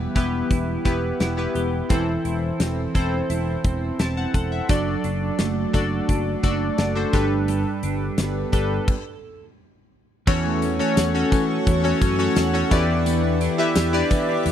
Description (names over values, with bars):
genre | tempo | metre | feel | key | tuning
1980s-style pop | 86 BPM | 4/4 | straight | unclear | A4 = 440 Hz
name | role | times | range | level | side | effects
glassy digital keys | accompaniment | 0.0-14.5 s | G2 to A5 | -23 LUFS | left 2 dB | chorus, tremolo
twelve-string electric guitar | riff | 0.0-14.5 s | E3 to A4 | -28 LUFS | right 8 dB | analog chorus
sustaining fretless electric bass | bass | 0.0-14.5 s | E1 to E3 | -26 LUFS | equal | none
huge arena drum kit | drums | 0.2-14.5 s | crash cymbal, hi-hat, kick drum, snare drum, tambourine | -23 LUFS | equal | none
shimmering ambient pad | sustained chords | 10.8-14.5 s | G4 to D6 | -31 LUFS | equal | chorus, built-in reverb
tambourine | percussion | 10.3-14.5 s | none | -38 LUFS | left 12 dB | none
room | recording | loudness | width
little or no reverb | dry, close 1970s-style studio recording | -19 LUFS | side -10 dB against mid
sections
0.0-10.3 A section; 10.3-14.5 B section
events
synth keys fill 3.6-4.7; stop 8.9-10.3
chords
0.0 Em; 1.9 Am/E; 4.7 D/F#; 7.1 Gadd9; 8.9 N.C.; 10.3 F#m/E; 12.7 Em7